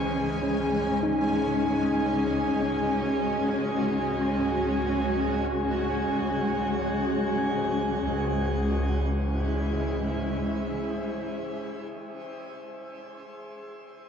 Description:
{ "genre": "ambient", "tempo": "75 BPM", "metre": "4/4", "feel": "straight", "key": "C# harmonic minor", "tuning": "A4 = 439 Hz", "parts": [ { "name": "granular cloud pad", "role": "sustained chords", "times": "0.0-11.7 s", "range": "E3 to G#5", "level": "-28 LUFS", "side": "equal", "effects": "built-in reverb" }, { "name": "muted felt-like synth keys", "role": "arpeggios", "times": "0.0-13.7 s", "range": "C#4 to C#5", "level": "-34 LUFS", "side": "left 1 dB", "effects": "chorus, tape echo" }, { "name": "clear chamber double bass section", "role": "bass", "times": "0.0-10.4 s", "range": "C#2", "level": "-32 LUFS", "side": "equal", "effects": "none" }, { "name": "glass harmonica", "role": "texture", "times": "0.0-8.1 s", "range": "G#4 to G#5", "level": "-33 LUFS", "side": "equal", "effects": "stereo widening" } ], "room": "wet shimmer reverb, RT60 7.6 s", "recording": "worn, warbling old tape, cassette tape, warbly pitch drift", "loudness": "-24 LUFS", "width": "side -7 dB against mid", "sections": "0.0-8.0 A section; 8.0-11.2 B section", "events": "fade-in on double bass section 0.0-8.0; fade-out on synth keys 0.0-8.0", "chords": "0.0 C#m", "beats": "0.03 0.83 | 1.63 2.43 3.23 4.03 | 4.83 5.63 6.43 7.23 | 8.03 8.83 9.63 10.43" }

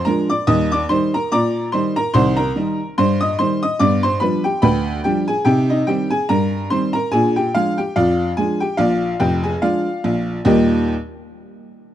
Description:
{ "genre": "ragtime piano", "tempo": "72 BPM", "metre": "2/4", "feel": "swing 55% on 16ths", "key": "Eb major", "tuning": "A4 = 440 Hz", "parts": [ { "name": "tack piano", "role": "solo", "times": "0.0-10.9 s", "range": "F1 to Eb6", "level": "-16 LUFS", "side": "equal", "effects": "none" } ], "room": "small room reverb", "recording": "dry, close 1970s-style studio recording", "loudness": "-16 LUFS", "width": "side -11 dB against mid", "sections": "0.0-10.5 A section; 10.5-11.9 B section", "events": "none", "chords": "0.5 Eb; 2.1 Cm; 3.8 G7; 5.5 Cm; 7.1 Bb7; 10.5 Eb", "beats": "| 0.47 1.30 | 2.13 2.97 | 3.80 4.63 | 5.46 6.30 | 7.13 7.96 | 8.79 9.63 | 10.47" }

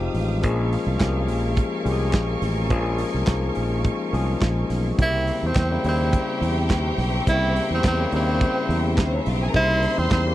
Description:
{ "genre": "disco", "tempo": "105 BPM", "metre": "4/4", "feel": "straight", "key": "unclear", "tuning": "A4 = 436 Hz", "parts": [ { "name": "barky tine electric piano", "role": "accompaniment", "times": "0.0-10.3 s", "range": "Db3 to Ab4", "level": "-26 LUFS", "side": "left 4 dB", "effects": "overdrive" }, { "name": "clear studio string section", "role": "sustained chords", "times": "0.0-10.3 s", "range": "Ab3 to Eb6", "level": "-32 LUFS", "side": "right 1 dB", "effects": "none" }, { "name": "fingered electric bass", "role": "bass", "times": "0.0-10.3 s", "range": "A1 to E2", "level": "-24 LUFS", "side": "right 1 dB", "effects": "none" }, { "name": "warm soul drum kit", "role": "drums", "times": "0.1-10.3 s", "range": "handclaps, hi-hat, kick drum, snare drum", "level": "-22 LUFS", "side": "right 1 dB", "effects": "none" }, { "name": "clear tenor saxophone", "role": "melody", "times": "5.0-10.2 s", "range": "C4 to E4", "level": "-24 LUFS", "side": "right 1 dB", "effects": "none" }, { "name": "clear studio string section", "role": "second line", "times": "5.0-10.3 s", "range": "C4 to C6", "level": "-30 LUFS", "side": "equal", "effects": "none" } ], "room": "little or no reverb", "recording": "dry, close 1970s-style studio recording", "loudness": "-20 LUFS", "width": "side -14 dB against mid", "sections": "0.0-5.0 A section; 5.0-10.3 B section", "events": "none", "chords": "0.4 Bbm7; 5.0 C7b9", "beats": "| 0.44 1.01 1.58 2.15 | 2.71 3.28 3.85 4.42 | 4.99 5.56 6.13 6.70 | 7.27 7.84 8.41 8.97 | 9.54 10.11" }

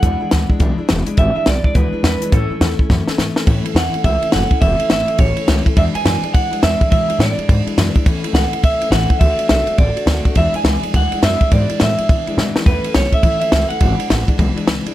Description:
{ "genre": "rockabilly", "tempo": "209 BPM", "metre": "4/4", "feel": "swing 63% on 8ths", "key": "A major", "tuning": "A4 = 440 Hz", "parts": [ { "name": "electric guitar through a small old amp", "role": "melody", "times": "0.0-14.5 s", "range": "A4 to G#5", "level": "-20 LUFS", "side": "right 2 dB", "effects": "plate reverb, analog delay" }, { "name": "picked steel-string acoustic guitar", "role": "accompaniment", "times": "0.0-14.9 s", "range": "E2 to F#4", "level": "-22 LUFS", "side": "left 4 dB", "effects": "plate reverb" }, { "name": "upright bass", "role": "bass", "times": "0.0-14.9 s", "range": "E1 to B2", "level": "-19 LUFS", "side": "equal", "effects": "none" }, { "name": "compact cocktail drum kit", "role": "drums", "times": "0.0-14.9 s", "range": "hi-hat, kick drum, ride cymbal, snare drum", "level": "-16 LUFS", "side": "equal", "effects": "none" } ], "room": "light reverb", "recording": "none", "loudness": "-13 LUFS", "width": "side -14 dB against mid", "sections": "0.0-3.5 A section; 3.5-12.7 B section; 12.7-14.9 A section", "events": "drum fill 2.9-3.5, 12.4", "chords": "0.0 E7; 2.3 A; 5.8 E7; 8.1 A; 9.2 D; 10.4 E7; 12.7 A; 13.8 E7", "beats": "| 0.03 0.32 0.60 0.89 | 1.18 1.46 1.75 2.04 | 2.33 2.61 2.90 3.19 | 3.47 3.76 4.05 4.33 | 4.62 4.91 5.19 5.48 | 5.77 6.05 6.34 6.63 | 6.91 7.20 7.49 7.78 | 8.06 8.35 8.64 8.92 | 9.21 9.50 9.79 10.07 | 10.36 10.65 10.94 11.22 | 11.51 11.80 12.09 12.37 | 12.66 12.95 13.24 13.53 | 13.81 14.10 14.39 14.67" }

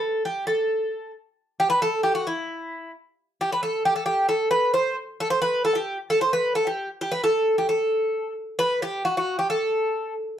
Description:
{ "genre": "greek folk", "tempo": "133 BPM", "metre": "2/4", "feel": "straight", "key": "A minor", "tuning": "A4 = 441 Hz", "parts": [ { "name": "Greek bouzouki", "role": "solo", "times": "0.0-10.1 s", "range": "E4 to C5", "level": "-22 LUFS", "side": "equal", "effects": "none" } ], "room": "wet studio reverb, RT60 0.6 s", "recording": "heard from further back in the room", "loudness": "-22 LUFS", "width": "side -10 dB against mid", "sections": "0.0-1.4 A section; 1.4-8.6 B section; 8.6-10.4 C section", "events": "none", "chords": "none", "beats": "0.02 | 0.47 0.92 | 1.37 1.82 | 2.27 2.72 | 3.17 3.62 | 4.08 4.53 | 4.98 5.43 | 5.88 6.33 | 6.78 7.23 | 7.68 8.13 | 8.59 9.04 | 9.49 9.94" }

